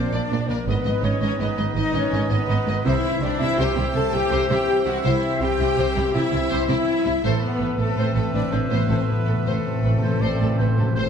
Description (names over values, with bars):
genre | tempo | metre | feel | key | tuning
cinematic, heroic adventure film score | 109 BPM (dotted quarters) | 12/8 | straight | unclear | A4 = 444 Hz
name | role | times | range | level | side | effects
clear clarinet | second line | 0.0-11.1 s | Bb4 to C5 | -34 LUFS | left 2 dB | none
small flute group | second line | 0.0-11.1 s | A4 to A5 | -32 LUFS | right 1 dB | none
warm cor anglais | second line | 0.0-11.0 s | C5 to E5 | -33 LUFS | right 3 dB | none
warm symphonic violin section | second line | 0.0-11.1 s | A4 to A5 | -36 LUFS | left 2 dB | none
warm symphonic viola section | accompaniment | 0.0-11.1 s | A3 to A4 | -30 LUFS | equal | none
bright trombone section | sustained chords | 0.0-11.1 s | D#3 to D#4 | -32 LUFS | right 3 dB | none
dark French horn section | sustained chords | 0.0-11.1 s | A3 to A4 | -26 LUFS | left 4 dB | none
concert harp | arpeggios | 0.0-11.1 s | G#2 to B5 | -32 LUFS | left 8 dB | none
warm studio violin section | melody | 0.1-11.1 s | E4 to D#5 | -32 LUFS | left 4 dB | none
dark symphonic cello section | bass | 0.1-11.0 s | G#2 to C3 | -27 LUFS | right 4 dB | none
dark symphonic double bass section | bass | 0.1-11.0 s | G#1 to C2 | -26 LUFS | right 3 dB | none
timpani | percussion | 7.2-11.1 s | A2 | -24 LUFS | equal | none
room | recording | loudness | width
wet scoring stage reverb, RT60 1.5 s | none | -19 LUFS | side -7 dB against mid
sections
0.0-11.1 A section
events
timpani fill 7.2-11.1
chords
0.0 Bbadd9; 0.7 G#m; 2.9 C; 7.2 Amadd9